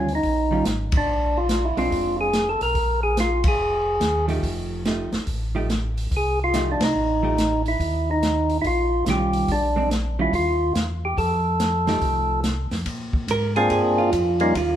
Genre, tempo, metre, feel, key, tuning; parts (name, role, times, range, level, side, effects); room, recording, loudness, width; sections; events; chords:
soul jazz organ trio; 142 BPM; 4/4; swing 65% on 8ths; A4 = 440 Hz
percussive tonewheel organ; melody; 0.0-14.5 s; G3 to Bb4; -22 LUFS; equal; overdrive, stopped rotary speaker
hollow-body jazz guitar; accompaniment; 0.0-14.8 s; Eb3 to Bb4; -26 LUFS; right 3 dB
mellow tonewheel organ; bass; 0.0-14.8 s; F1 to C3; -26 LUFS; equal; slow rotary speaker
warm soul drum kit; drums; 0.1-14.7 s; hi-hat, kick drum, ride cymbal, snare drum; -27 LUFS; equal
wet large studio reverb, RT60 1.2 s; band playing live in one room; -20 LUFS; side -10 dB against mid
0.0-12.9 A section; 12.9-14.8 B section
band accent 0.9, 3.4, 6.7; hollow-body jazz guitar solo 12.9-14.8
0.0 Eb7(no3); 1.1 Bb9; 4.4 F9; 7.8 Eb9; 9.5 Bb9; 10.3 Ebsus2; 11.2 F9; 12.9 Bb9